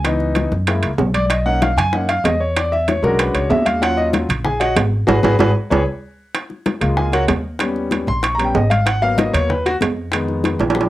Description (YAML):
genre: Afro-Cuban jazz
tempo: 190 BPM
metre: 4/4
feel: straight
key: F# major from 6.3 s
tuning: A4 = 441 Hz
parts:
  - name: clear concert grand piano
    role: accompaniment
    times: 0.0-10.9 s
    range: Eb3 to C#6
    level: -18 LUFS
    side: left 1 dB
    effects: cassette tape
  - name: upright bass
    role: bass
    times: 0.0-10.9 s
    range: Ab1 to Gb2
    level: -20 LUFS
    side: equal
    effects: none
  - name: bongos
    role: percussion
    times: 0.0-10.9 s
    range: none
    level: -25 LUFS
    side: left 4 dB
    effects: none
  - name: timbales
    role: percussion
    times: 0.0-10.9 s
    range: none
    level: -21 LUFS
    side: right 5 dB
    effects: none
  - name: congas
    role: percussion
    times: 0.1-10.9 s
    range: none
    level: -26 LUFS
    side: left 1 dB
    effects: none
room: light reverb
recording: home recording on cassette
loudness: -15 LUFS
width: side -15 dB against mid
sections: 0.0-6.3 A section; 6.3-10.9 A section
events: grand piano solo 0.0-10.9; band accent 5.1-6.3; drum fill 5.9-6.3, 10.6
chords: 0.0 Dbm7; 0.7 Gb7; 1.3 Bmaj7; 2.6 E13; 3.8 Ebm7; 5.1 Abm7; 5.7 Db5; 6.3 F#maj7; 7.6 D#7b13; 8.9 G#m7; 10.1 Fm7b5